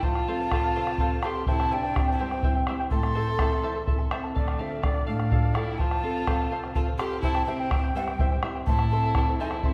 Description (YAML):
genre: andean folk, Andean ensemble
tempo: 83 BPM (dotted quarters)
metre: 6/8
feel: straight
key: A minor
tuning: A4 = 440 Hz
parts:
  - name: mellow quena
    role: melody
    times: 0.0-9.7 s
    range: D5 to C6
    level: -33 LUFS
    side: equal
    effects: none
  - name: dark violin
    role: second line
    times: 0.0-9.7 s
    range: A3 to A4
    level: -36 LUFS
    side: equal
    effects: none
  - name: charango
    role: accompaniment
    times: 0.0-9.7 s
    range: E4 to A5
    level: -37 LUFS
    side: equal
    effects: none
  - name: nylon-string guitar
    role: accompaniment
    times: 0.0-9.7 s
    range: E2 to A4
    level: -34 LUFS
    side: equal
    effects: none
  - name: bombo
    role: percussion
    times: 0.0-9.7 s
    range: none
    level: -29 LUFS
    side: equal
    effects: none
room: wet recital hall reverb, RT60 1.4 s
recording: recorded in a church or concert hall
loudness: -26 LUFS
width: mono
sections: 0.0-9.7 A section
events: none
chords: 0.0 F; 1.5 C; 2.9 Am; 4.4 Dm; 5.8 F; 7.2 C; 8.7 Am